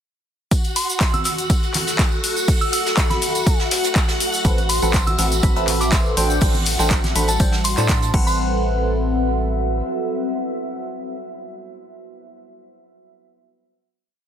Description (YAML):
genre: piano house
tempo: 122 BPM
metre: 4/4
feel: swing 53% on 16ths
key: A dorian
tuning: A4 = 440 Hz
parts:
  - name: string machine, violins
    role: sustained chords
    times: 0.5-8.1 s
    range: F#4 to F#5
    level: -27 LUFS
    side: equal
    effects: ensemble chorus, sidechain pumping
  - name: electronic kick drum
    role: drums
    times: 0.5-8.2 s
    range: none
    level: -18 LUFS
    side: equal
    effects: overdrive
  - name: punchy analog drum machine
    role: drums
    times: 0.5-8.2 s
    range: cabasa, crash cymbal, handclaps, hi-hat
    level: -24 LUFS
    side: left 2 dB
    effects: overdrive
  - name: vintage brush drum kit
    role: drums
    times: 0.5-8.1 s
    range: hi-hat, snare drum, tambourine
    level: -29 LUFS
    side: right 2 dB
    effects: high-pass filter on hats, high-pass filter on snare, high-pass filter on perc, high-pass filter on room
  - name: tambourine and congas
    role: percussion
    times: 0.5-8.4 s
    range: none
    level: -31 LUFS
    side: right 3 dB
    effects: none
  - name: deep dark ambient pad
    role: texture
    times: 1.8-11.6 s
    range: G3 to E5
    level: -29 LUFS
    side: equal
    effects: chorus, built-in reverb, sidechain pumping
  - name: soft synth bell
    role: melody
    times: 0.8-8.4 s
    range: A5 to E6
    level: -28 LUFS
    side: right 2 dB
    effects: chorus, dub echo
  - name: organ-like FM bass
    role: bass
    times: 4.4-9.8 s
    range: A1 to A2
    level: -22 LUFS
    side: equal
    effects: sidechain pumping
  - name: barking FM electric piano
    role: riff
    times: 4.5-11.2 s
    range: C4 to B5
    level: -24 LUFS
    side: left 1 dB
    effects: phaser, sidechain pumping, dub echo
room: light reverb, small room ambience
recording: dense, heavily limited modern master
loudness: -17 LUFS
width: side -9 dB against mid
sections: 0.5-8.4 groove; 8.4-12.3 final chord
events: none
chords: 0.5 F#m7; 4.2 Am69; 6.2 D7sus4/A; 8.1 Am69